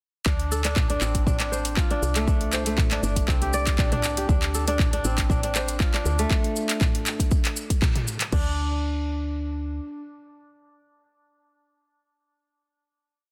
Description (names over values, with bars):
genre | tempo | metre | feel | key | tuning
afro house | 119 BPM | 4/4 | straight | D minor | A4 = 439 Hz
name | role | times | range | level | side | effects
kora | arpeggios | 0.3-10.0 s | A3 to D5 | -31 LUFS | equal | sidechain pumping, dub echo
woody FM bass | bass | 0.3-9.8 s | G1 to D2 | -30 LUFS | equal | sidechain pumping
electronic kick drum | drums | 0.3-8.4 s | none | -25 LUFS | equal | none
house drum kit | drums | 0.3-8.4 s | crash cymbal, handclaps, hi-hat, toms | -31 LUFS | equal | none
cabasa | percussion | 0.3-8.3 s | none | -38 LUFS | equal | none
room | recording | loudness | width
digital ambience | dense, heavily limited modern master | -24 LUFS | mono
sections
0.3-8.3 drop; 8.3-12.4 final note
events
drop 0.3-8.3; band accent 7.8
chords
0.3 Dm7; 2.3 Csus2; 4.3 Dm7; 6.3 N.C.